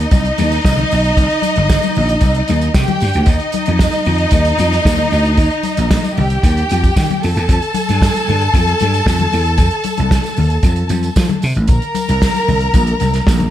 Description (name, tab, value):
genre	disco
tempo	114 BPM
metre	4/4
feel	straight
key	unclear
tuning	A4 = 439 Hz
part	rich studio violin section	second line	0.0-13.5 s	Eb4 to Bb5	-17 LUFS	equal	none
part	vintage slap bass	bass	0.0-13.5 s	G1 to F3	-16 LUFS	equal	none
part	warm soul drum kit	drums	0.1-13.5 s	hi-hat, kick drum, snare drum	-16 LUFS	equal	gated reverb
part	congas	percussion	0.1-13.5 s	none	-24 LUFS	left 8 dB	none
part	tambourine	percussion	0.1-13.4 s	none	-33 LUFS	right 8 dB	none
room	light reverb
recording	none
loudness	-12 LUFS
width	side -12 dB against mid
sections	0.0-13.5 A section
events	none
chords	0.0 Cm; 3.3 Eb; 7.2 F; 11.7 Bb5